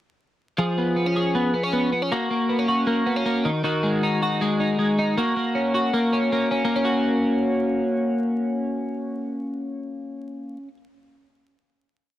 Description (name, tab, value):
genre	indie pop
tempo	157 BPM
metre	4/4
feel	straight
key	F# major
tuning	A4 = 440 Hz
part	twelve-string electric guitar	solo	0.6-10.8 s	D#3 to G#4	-21 LUFS	equal	analog chorus
room	little or no reverb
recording	dry, close 1970s-style studio recording, vinyl crackle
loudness	-20 LUFS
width	side -13 dB against mid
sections	0.6-6.7 pre-chorus; 6.7-9.8 final chord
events	none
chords	0.6 C#7; 2.1 F#; 3.5 D#madd11; 5.2 F#/A#